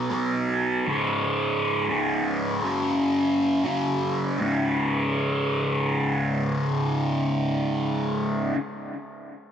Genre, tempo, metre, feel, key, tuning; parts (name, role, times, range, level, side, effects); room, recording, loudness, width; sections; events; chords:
rock; free time; A4 = 444 Hz
fuzz guitar; solo; 0.0-8.6 s; Db2 to Cb4; -23 LUFS; equal; distortion, phaser, analog delay
light reverb, digital ambience; echo-heavy mix; -22 LUFS; side -8 dB against mid
0.0-4.4 A section; 4.4-8.0 B section
0.0 Cb5; 0.9 Db5; 2.6 Gb5; 4.4 Db5